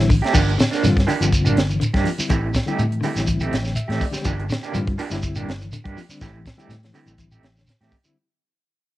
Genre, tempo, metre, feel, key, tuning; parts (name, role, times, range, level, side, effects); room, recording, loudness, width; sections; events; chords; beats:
afrobeat; 123 BPM; 4/4; swing 54% on 16ths; G dorian; A4 = 439 Hz
reed electric piano; accompaniment; 0.0-8.2 s; D3 to G5; -28 LUFS; left 2 dB; fast tremolo, cassette tape, plate reverb
electric guitar at the edge of break-up; arpeggios; 0.0-8.1 s; D3 to G3; -29 LUFS; left 5 dB; tremolo, cassette tape, plate reverb
fingered electric bass; bass; 0.0-8.1 s; G1 to A2; -23 LUFS; equal
tight funk drum kit; drums; 0.0-8.2 s; crash cymbal, hi-hat, kick drum, snare drum; -22 LUFS; equal; cassette tape
shekere; percussion; 0.1-8.2 s; -25 LUFS; right 1 dB
electric guitar through a small old amp; stabs; 0.2-8.0 s; E3 to G4; -26 LUFS; right 5 dB; tremolo, cassette tape, plate reverb
light reverb; home recording on cassette; -18 LUFS; side -15 dB against mid
0.3-8.2 A section
fade-out 0.3-8.2; reed electric piano fill 3.3-4.3
0.3 Gm7; 2.3 Am7; 4.3 Gm7; 6.2 Am7
| 0.34 0.83 1.32 1.81 | 2.30 2.79 3.28 3.77 | 4.26 4.75 5.24 5.73 | 6.22 6.71 7.19 7.68